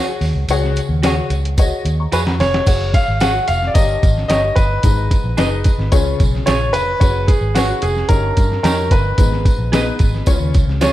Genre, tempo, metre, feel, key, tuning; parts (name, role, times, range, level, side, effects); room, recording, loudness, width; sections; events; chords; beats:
uptempo 1960s-style soul; 110 BPM; 4/4; straight; F# major; A4 = 439 Hz
warm upright piano; accompaniment; 0.0-10.9 s; G2 to C#6; -23 LUFS; left 5 dB
electric guitar through a small old amp; stabs; 0.0-10.9 s; D#4 to D#5; -27 LUFS; right 4 dB; wide subtle chorus, slapback echo
vintage muted fingered electric bass; bass; 0.2-10.9 s; E#1 to G2; -19 LUFS; equal
lo-fi sampler-style drum kit; drums; 0.2-10.9 s; crash cymbal, hi-hat, kick drum, snare drum; -16 LUFS; equal
tambourine; percussion; 0.2-10.9 s; -32 LUFS; right 4 dB
clear grand piano; melody; 2.1-10.9 s; F#4 to F#5; -20 LUFS; equal; slapback echo
light reverb; -13 LUFS; side -14 dB against mid
0.0-2.7 A section; 2.7-10.9 B section
drum fill 1.6-2.7
0.0 C#sus4; 2.7 F#sus2; 3.8 D#7/G; 4.8 G#m; 5.9 C#; 7.0 F#sus2; 8.1 D#7/G; 9.2 G#m; 10.3 C#
| 0.49 1.03 1.58 2.12 | 2.67 3.21 3.75 4.30 | 4.84 5.38 5.93 6.47 | 7.01 7.56 8.10 8.64 | 9.19 9.73 10.27 10.81